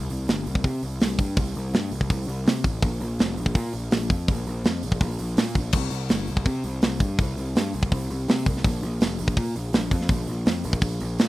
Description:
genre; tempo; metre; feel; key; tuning
heavy metal; 165 BPM; 4/4; straight; unclear; A4 = 439 Hz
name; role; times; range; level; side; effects
fuzz picked electric bass; bass; 0.0-11.3 s; F1 to C3; -27 LUFS; equal; overdrive
tight metal drum kit; drums; 0.1-11.3 s; crash cymbal, hi-hat, kick drum, snare drum; -23 LUFS; equal; none
room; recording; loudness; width
little or no reverb; rough home demo mix; -22 LUFS; side -17 dB against mid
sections
0.0-11.3 A section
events
none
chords
none

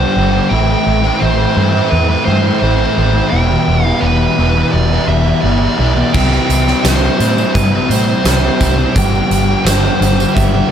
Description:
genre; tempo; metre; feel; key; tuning
rock, shoegaze and dream pop; 85 BPM; 4/4; straight; C major; A4 = 440 Hz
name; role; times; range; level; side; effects
dark smooth lead guitar; melody; 0.0-10.7 s; B4 to G5; -18 LUFS; right 2 dB; overdrive, analog delay
biting overdriven guitar; riff; 0.0-10.7 s; E2 to G4; -18 LUFS; right 8 dB; reverse reverb
thick fuzz guitar; riff; 0.0-10.7 s; E2 to C4; -16 LUFS; left 7 dB; distortion, ensemble chorus
vintage muted fingered electric bass; bass; 0.0-10.6 s; E1 to A2; -15 LUFS; equal; none
huge arena drum kit; drums; 6.1-10.5 s; crash cymbal, hi-hat, kick drum, snare drum; -17 LUFS; equal; none
tambourine; percussion; 6.3-10.5 s; none; -30 LUFS; right 8 dB; none
room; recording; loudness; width
moderate lush hall reverb, RT60 2.1 s; dreamy mix soaked in reverb; -10 LUFS; side -9 dB against mid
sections
0.0-10.7 A section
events
none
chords
0.0 G7sus4; 0.5 Am7; 3.3 Em7; 6.1 C6; 9.0 G7sus4

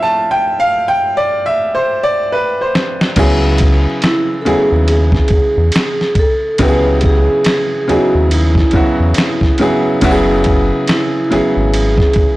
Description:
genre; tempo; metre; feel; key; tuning
R&B, neo-soul; 70 BPM; 4/4; swing 59% on 16ths; C# minor; A4 = 440 Hz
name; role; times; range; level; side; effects
clear grand piano; accompaniment; 0.0-12.4 s; C#3 to A5; -14 LUFS; equal; none
dusty soul sampler-style drum kit; drums; 2.8-12.4 s; crash cymbal, finger snaps, kick drum, ride cymbal, snare drum; -15 LUFS; equal; soft clipping on snare
round analog bass; bass; 3.2-12.3 s; F#1 to E2; -14 LUFS; equal; transformer saturation
vibraphone with soft mallets; melody; 4.0-12.4 s; D#4 to B4; -16 LUFS; right 1 dB; none
room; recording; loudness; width
light reverb; blown-out, overdriven recording, vinyl crackle, overdrive; -11 LUFS; side -18 dB against mid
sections
0.0-3.2 A section; 3.2-12.4 B section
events
break 0.0-3.2; grand piano solo 0.0-3.2; drum fill 1.4-3.2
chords
0.0 Dm9; 3.2 C#m9; 10.0 F#7sus2

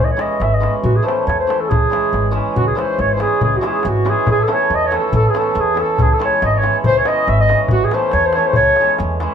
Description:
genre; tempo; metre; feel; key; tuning
balkan folk, Balkan wedding band; 140 BPM; 2/4; swing 55% on 16ths; C# harmonic minor; A4 = 440 Hz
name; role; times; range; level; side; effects
dark clarinet; melody; 0.0-9.0 s; F#4 to E5; -17 LUFS; equal; none
cimbalom; accompaniment; 0.0-9.3 s; E3 to E4; -21 LUFS; right 2 dB; none
upright bass; bass; 0.0-9.3 s; G#1 to E2; -20 LUFS; left 1 dB; none
darbuka; percussion; 0.1-9.3 s; none; -21 LUFS; left 2 dB; none
mellow trumpet; second line; 2.6-9.0 s; F#4 to E5; -23 LUFS; right 1 dB; none
room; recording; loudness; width
moderate studio reverb, RT60 0.7 s; band playing live in one room; -13 LUFS; side -8 dB against mid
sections
0.0-2.6 A section; 2.6-9.3 A section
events
none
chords
0.0 C#m; 0.8 A; 1.7 C#m; 4.3 A; 6.0 C#m; 7.7 A; 8.6 C#m

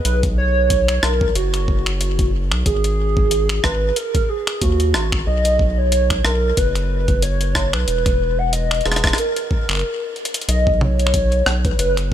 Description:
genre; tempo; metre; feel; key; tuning
IDM; 92 BPM; 4/4; swing 56% on 16ths; B major; A4 = 439 Hz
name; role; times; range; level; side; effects
warbly nostalgic lead; melody; 0.0-12.1 s; F#4 to F#5; -21 LUFS; right 1 dB; lush chorus, ping-pong delay
round analog bass; bass; 0.1-12.1 s; E1 to D#2; -20 LUFS; equal; none
jungle sampler-style drum kit; drums; 0.1-12.1 s; finger snaps, hi-hat, rim click, toms; -23 LUFS; left 1 dB; studio reverb, ping-pong delay
electronic kick drum; drums; 0.2-12.1 s; none; -20 LUFS; equal; studio reverb
room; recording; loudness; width
digital ambience; none; -16 LUFS; side -10 dB against mid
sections
0.0-10.5 A section; 10.5-12.1 B section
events
break 9.8-10.5; drum fill 10.2-10.5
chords
0.1 Bsus2; 2.7 G#5; 5.3 B5; 7.9 Emaj7; 9.2 F#; 10.5 Bsus2

